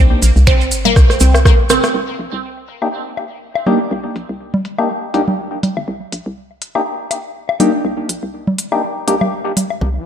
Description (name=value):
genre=minimal techno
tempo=122 BPM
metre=4/4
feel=swing 56% on 16ths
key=C minor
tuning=A4 = 440 Hz
part: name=resonant blip pluck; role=riff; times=0.0-1.8 s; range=Bb3 to C4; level=-18 LUFS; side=right 2 dB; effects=phaser, sidechain pumping, diffuse ambient delay
part: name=hollow knocking FM bass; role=bass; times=0.0-10.0 s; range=G1 to F2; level=-16 LUFS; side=equal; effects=sidechain pumping, high-pass filter
part: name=minimal click drum kit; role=drums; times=0.2-9.7 s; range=finger snaps, hi-hat, rim click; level=-18 LUFS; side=right 1 dB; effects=high-pass filter on hats, low-pass filter on hats, high-pass filter on snare, low-pass filter on snare, high-pass filter on room, low-pass filter on room
part: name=maracas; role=percussion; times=0.2-1.9 s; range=none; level=-25 LUFS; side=right 5 dB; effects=none
part: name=electronic kick drum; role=drums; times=0.5-1.6, 9.8-9.9 s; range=none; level=-10 LUFS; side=equal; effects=high-pass filter on kick, high-pass filter on room
part: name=congas and woodblock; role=percussion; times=0.9-9.8 s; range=none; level=-21 LUFS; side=left 1 dB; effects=tape echo
part: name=percussive organ stab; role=stabs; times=2.8-9.2 s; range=Bb3 to G4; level=-18 LUFS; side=left 2 dB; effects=chorus, phaser, tape echo
part: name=riser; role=sound effects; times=9.9-10.1 s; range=none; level=-31 LUFS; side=left 3 dB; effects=none
room=moderate lush hall reverb, RT60 1.7 s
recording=dreamy mix soaked in reverb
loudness=-13 LUFS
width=side -9 dB against mid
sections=0.0-1.9 A section; 1.9-9.8 B section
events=drop 0.0-1.9; drum fill 1.0-1.9; filter sweep on drum 1.9-9.8; riser 9.9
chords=0.0 C7(no3); 1.9 Cm7